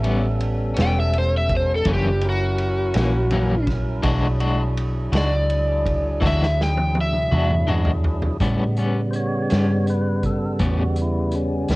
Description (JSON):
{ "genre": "slow blues", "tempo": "55 BPM (dotted quarters)", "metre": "12/8", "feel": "straight", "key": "A mixolydian", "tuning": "A4 = 443 Hz", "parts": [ { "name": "overdriven semi-hollow guitar", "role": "melody", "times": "0.0-7.7 s", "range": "F#4 to G5", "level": "-24 LUFS", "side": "equal", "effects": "cassette tape" }, { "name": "electric guitar at the edge of break-up", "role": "accompaniment", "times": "0.0-11.8 s", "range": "F#2 to F#4", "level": "-25 LUFS", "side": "left 2 dB", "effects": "tremolo, cassette tape" }, { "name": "tonewheel organ", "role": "sustained chords", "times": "0.0-11.8 s", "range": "C#3 to C#5", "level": "-26 LUFS", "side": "equal", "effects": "slow rotary speaker, cassette tape" }, { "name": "vintage muted fingered electric bass", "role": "bass", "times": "0.0-11.8 s", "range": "E1 to A2", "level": "-22 LUFS", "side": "equal", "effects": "none" }, { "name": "vintage drum kit", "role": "drums", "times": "0.0-11.8 s", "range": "hi-hat, kick drum, ride cymbal, snare drum, toms", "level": "-27 LUFS", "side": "equal", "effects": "cassette tape" } ], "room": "small room ambience", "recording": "home recording on cassette, nothing above 10.9 kHz", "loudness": "-18 LUFS", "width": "side -22 dB against mid", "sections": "0.0-8.4 A section; 8.4-11.8 A section", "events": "overdriven electric guitar solo 0.0-8.4; drum fill 6.2-8.4; tonewheel organ solo 8.4-11.8", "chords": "0.0 A9; 1.9 F#7; 4.0 E9; 8.4 A9" }